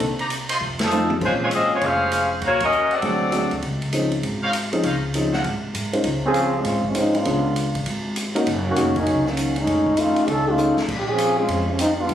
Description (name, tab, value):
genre	jazz, big band swing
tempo	199 BPM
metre	4/4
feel	swing 63% on 8ths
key	Db major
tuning	A4 = 440 Hz
part	upright bass	bass	0.0-12.1 s	F1 to Ab2	-28 LUFS	equal	none
part	swinging big-band drum kit	drums	0.0-12.1 s	crash cymbal, hi-hat, kick drum, ride cymbal, snare drum, toms	-29 LUFS	equal	none
part	clear trumpet section	stabs	0.2-5.4 s	D4 to C6	-27 LUFS	equal	none
part	clear saxophone section	melody	0.8-3.5 s	F3 to F5	-19 LUFS	left 1 dB	none
part	warm grand piano	accompaniment	0.9-10.8 s	F3 to C5	-23 LUFS	left 1 dB	none
part	warm trombone section	second line	6.3-12.1 s	C3 to A4	-20 LUFS	equal	none
room	moderate echo chamber reverb, RT60 1.3 s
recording	recorded on a phone in the room, studio reverb, compression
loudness	-19 LUFS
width	side -10 dB against mid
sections	0.0-6.0 A section; 6.0-12.1 B section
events	band accent 0.8, 2.6; drum fill 0.9-1.2, 10.6-10.9; trombone section solo 6.0-12.1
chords	0.0 Cm9; 0.6 F7; 1.2 Bbm9; 2.4 Ebm9; 3.0 D7#11; 3.6 Dbmaj9; 5.4 Ab6; 6.0 Dbmaj7; 7.3 Db7b9; 8.5 Gb6; 9.7 F7alt; 10.9 Bbm9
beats	| 0.01 0.31 0.61 0.91 | 1.22 1.52 1.82 2.12 | 2.42 2.73 3.03 3.33 | 3.63 3.93 4.24 4.54 | 4.84 5.14 5.45 5.75 | 6.05 6.35 6.65 6.96 | 7.26 7.56 7.86 8.16 | 8.47 8.77 9.07 9.37 | 9.68 9.98 10.28 10.58 | 10.88 11.19 11.49 11.79 | 12.09